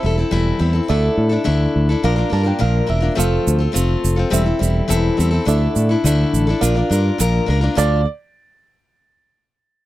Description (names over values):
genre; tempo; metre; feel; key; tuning
folk rock and heartland rock; 104 BPM; 4/4; straight; D minor; A4 = 440 Hz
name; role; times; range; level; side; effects
bright reed electric piano; accompaniment; 0.0-8.0 s; A4 to A5; -26 LUFS; right 7 dB; overdrive
picked plugged-in steel-string acoustic guitar; accompaniment; 0.0-8.0 s; Bb2 to Bb4; -20 LUFS; left 4 dB; none
fingered electric bass; bass; 0.0-8.0 s; E1 to A2; -17 LUFS; equal; none
tube shaker; percussion; 3.2-8.0 s; none; -25 LUFS; right 12 dB; none
bright upright piano; second line; 7.8-8.0 s; D5; -20 LUFS; right 5 dB; none
room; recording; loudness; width
little or no reverb; dry, close 1970s-style studio recording; -15 LUFS; side -15 dB against mid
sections
0.0-7.8 A section; 7.8-9.9 B section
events
reed electric piano fill 2.0-3.2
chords
0.0 C6/E; 0.9 Dsus2; 2.0 Bb; 3.2 F; 4.3 C6/E; 5.5 Dsus2; 6.6 Bb; 7.8 Dm